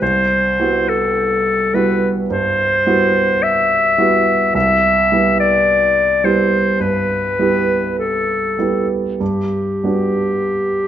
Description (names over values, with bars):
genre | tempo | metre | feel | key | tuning
classical, impressionist duo for clarinet and grand piano | 47-54 BPM | 4/4 | rubato | unclear | A4 = 440 Hz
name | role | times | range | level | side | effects
bright clarinet | melody | 0.0-10.9 s | G4 to E5 | -15 LUFS | left 2 dB | none
clear grand piano | accompaniment | 0.0-10.9 s | C2 to G4 | -18 LUFS | right 3 dB | none
room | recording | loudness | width
moderate recital hall reverb, RT60 1.4 s | nothing above 7.9 kHz | -13 LUFS | side -10 dB against mid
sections
0.0-10.9 A section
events
none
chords
0.0 Cmaj7#11; 4.6 Cmaj7; 9.2 Gmaj7